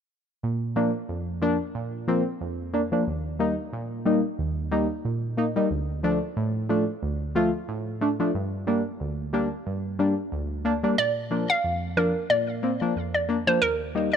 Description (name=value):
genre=dancehall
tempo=91 BPM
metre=4/4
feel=swing 56% on 16ths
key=Bb major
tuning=A4 = 438 Hz
part: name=deep mellow chord stab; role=accompaniment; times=0.4-14.1 s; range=D2 to F4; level=-24 LUFS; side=equal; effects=chorus
part: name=hollow square pluck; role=melody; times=11.0-14.2 s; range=Bb4 to F5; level=-24 LUFS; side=right 1 dB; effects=chorus
room=light reverb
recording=none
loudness=-24 LUFS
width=side -8 dB against mid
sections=0.4-11.0 A section; 11.0-14.2 B section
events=none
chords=0.4 Bb; 3.1 Eb; 5.7 Dm; 8.3 Gm; 11.0 Bb; 13.6 Eb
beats=| 0.43 1.09 1.75 2.41 | 3.07 3.73 4.39 5.05 | 5.71 6.37 7.03 7.68 | 8.35 9.00 9.66 10.32 | 10.98 11.64 12.30 12.96 | 13.62